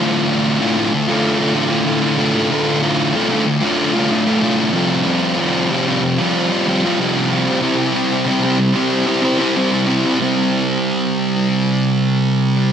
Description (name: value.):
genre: rock.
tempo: 94 BPM.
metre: 4/4.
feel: straight.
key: unclear.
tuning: A4 = 438 Hz.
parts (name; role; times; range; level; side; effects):
thick fuzz guitar; solo; 0.0-12.7 s; D2 to C5; -14 LUFS; equal; distortion, analog delay.
room: wet lush hall reverb, RT60 2.8 s.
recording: big arena sound.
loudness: -14 LUFS.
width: side -8 dB against mid.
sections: 0.0-10.2 A section; 10.2-12.7 B section.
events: none.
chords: 0.0 Dm; 4.7 Fsus2; 7.6 C; 10.2 C5.